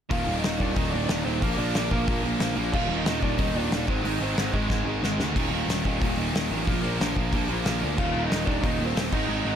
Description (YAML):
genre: punk rock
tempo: 183 BPM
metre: 4/4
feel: straight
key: unclear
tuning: A4 = 440 Hz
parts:
  - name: lead guitar through a small cranked amp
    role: melody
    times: 0.1-4.9, 8.0-9.6 s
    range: Ab3 to F5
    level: -32 LUFS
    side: right 2 dB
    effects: overdrive
  - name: distorted electric guitar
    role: riff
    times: 0.1-9.6 s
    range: Eb2 to Bb3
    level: -31 LUFS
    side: right 12 dB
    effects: distortion
  - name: distorted electric guitar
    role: riff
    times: 0.1-9.6 s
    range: Eb2 to Bb3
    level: -33 LUFS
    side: equal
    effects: overdrive
  - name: tight distorted guitar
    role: riff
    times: 0.1-9.6 s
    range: Eb2 to Bb3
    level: -34 LUFS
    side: left 14 dB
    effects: distortion
  - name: fuzz picked electric bass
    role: bass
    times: 0.1-9.6 s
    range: Eb1 to D2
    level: -29 LUFS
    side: equal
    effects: overdrive
  - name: loose indie drum kit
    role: drums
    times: 0.1-9.2 s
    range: crash cymbal, hi-hat, kick drum, snare drum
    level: -28 LUFS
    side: left 1 dB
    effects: none
room: little or no reverb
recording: none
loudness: -23 LUFS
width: side -8 dB against mid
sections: 0.1-9.6 A section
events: drum fill 4.7-5.4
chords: 0.1 Eb5; 1.4 Bb; 2.7 Eb5; 3.9 Ab; 5.4 Eb5; 6.7 Bb5; 8.0 Eb5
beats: | 0.11 0.44 0.77 1.09 | 1.42 1.75 2.08 2.41 | 2.74 3.07 3.39 3.72 | 4.05 4.38 4.71 5.04 | 5.36 5.69 6.02 6.35 | 6.67 7.00 7.33 7.66 | 7.99 8.31 8.64 8.97 | 9.29